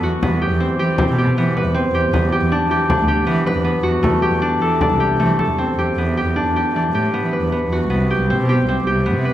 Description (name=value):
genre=contemporary instrumental, chamber music in an uneven meter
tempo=157 BPM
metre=5/4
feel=straight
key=E minor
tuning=A4 = 440 Hz
part: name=concert harp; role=arpeggios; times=0.0-9.3 s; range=A3 to B4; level=-18 LUFS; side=equal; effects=none
part: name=dark cello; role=bass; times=0.0-9.3 s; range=C2 to E3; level=-19 LUFS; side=right 1 dB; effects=none
part: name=frame drum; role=percussion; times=0.2-5.9 s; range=none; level=-24 LUFS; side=left 1 dB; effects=none
room=wet recital hall reverb, RT60 1.5 s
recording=recorded in a church or concert hall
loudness=-15 LUFS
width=side -12 dB against mid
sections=0.0-6.0 A section; 6.0-9.3 B section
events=none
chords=0.2 Cmaj7/E; 2.1 Em7; 4.0 D7sus4; 6.0 Em7; 7.9 C5